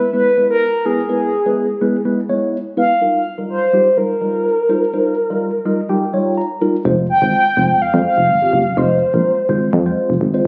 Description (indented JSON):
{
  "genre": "dance-pop",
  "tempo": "125 BPM",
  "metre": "4/4",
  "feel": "straight",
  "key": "unclear",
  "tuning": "A4 = 438 Hz",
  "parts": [
    { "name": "mellow horn-like synth lead", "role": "melody", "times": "0.0-9.7 s", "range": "G#4 to G5", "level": "-18 LUFS", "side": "equal", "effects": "chorus, digital delay" },
    { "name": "mellow tine electric piano", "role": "accompaniment", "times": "0.0-10.5 s", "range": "G3 to Bb5", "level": "-21 LUFS", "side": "equal", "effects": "phaser" },
    { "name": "solid FM bass", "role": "bass", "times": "6.9-10.4 s", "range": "F1 to F2", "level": "-19 LUFS", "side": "equal", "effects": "none" }
  ],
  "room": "light reverb",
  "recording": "recorded on a phone in the room, studio reverb",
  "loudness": "-16 LUFS",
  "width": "mono",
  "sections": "0.0-6.9 A section; 6.9-10.5 B section",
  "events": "tine electric piano fill 5.4-6.9",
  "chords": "0.0 E; 3.0 Ebadd9; 6.9 Fm",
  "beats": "0.13 0.61 | 1.09 1.57 2.05 2.53 | 3.01 3.49 3.97 4.45 | 4.93 5.41 5.89 6.37 | 6.85 7.33 7.81 8.29 | 8.77 9.25 9.73 10.21"
}